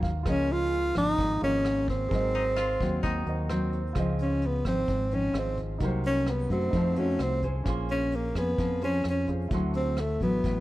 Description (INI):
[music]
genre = bossa nova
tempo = 130 BPM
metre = 4/4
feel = straight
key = Db major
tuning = A4 = 440 Hz
[part]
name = nylon-string guitar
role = accompaniment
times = 0.0-10.6 s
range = Ab2 to C5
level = -33 LUFS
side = left 2 dB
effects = none
[part]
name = warm baby grand piano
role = accompaniment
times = 0.0-10.6 s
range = Db4 to C6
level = -39 LUFS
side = right 4 dB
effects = none
[part]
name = fingered electric bass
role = bass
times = 0.0-10.6 s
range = Ab1 to Gb2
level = -30 LUFS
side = equal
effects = none
[part]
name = vintage brush drum kit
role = drums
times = 0.0-10.6 s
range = hi-hat, kick drum, rim click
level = -34 LUFS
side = equal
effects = none
[part]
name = mellow tenor saxophone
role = melody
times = 0.3-10.6 s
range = A3 to F4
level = -28 LUFS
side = equal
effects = none
[part]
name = koto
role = second line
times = 2.3-6.1 s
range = C4 to F4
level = -36 LUFS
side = left 1 dB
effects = none
[sound]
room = little or no reverb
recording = none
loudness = -25 LUFS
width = side -16 dB against mid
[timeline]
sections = 0.0-4.0 A section; 4.0-10.6 B section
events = grand piano fill 0.0; tenor saxophone solo 4.0-10.6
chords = 0.3 Db69; 2.1 Ab7; 4.0 Dbmaj9; 5.8 Cm7b5; 6.7 F7b9; 7.7 Bbm9; 9.5 D9